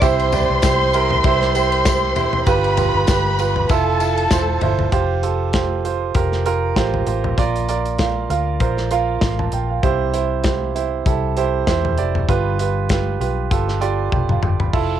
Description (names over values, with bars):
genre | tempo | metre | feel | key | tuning
piano-driven pop | 98 BPM | 4/4 | swing 56% on 16ths | F major | A4 = 438 Hz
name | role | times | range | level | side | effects
warm studio violin section | second line | 0.0-4.9 s | A4 to C6 | -20 LUFS | left 2 dB | cassette tape
warm concert grand piano | accompaniment | 0.0-15.0 s | G2 to B5 | -20 LUFS | right 8 dB | cassette tape
vintage muted fingered electric bass | bass | 0.0-15.0 s | E1 to E2 | -22 LUFS | left 2 dB | none
modern studio drum kit | drums | 0.0-14.9 s | crash cymbal, hi-hat, kick drum, ride cymbal, snare drum, toms | -21 LUFS | left 2 dB | cassette tape
tambourine | percussion | 0.0-4.5 s | none | -34 LUFS | left 16 dB | none
room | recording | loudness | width
light reverb | home recording on cassette | -16 LUFS | side -10 dB against mid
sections
0.0-4.9 A section; 4.9-14.7 B section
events
drum fill 14.1-14.7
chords
0.0 C; 2.5 G7; 3.7 Fmaj7; 4.9 Fsus2; 7.4 Bb; 9.8 C; 12.3 G7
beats
| 0.02 0.63 1.24 1.86 | 2.47 3.08 3.70 4.31 | 4.92 5.54 6.15 6.76 | 7.38 7.99 8.61 9.22 | 9.83 10.44 11.06 11.67 | 12.28 12.89 13.51 14.12 | 14.73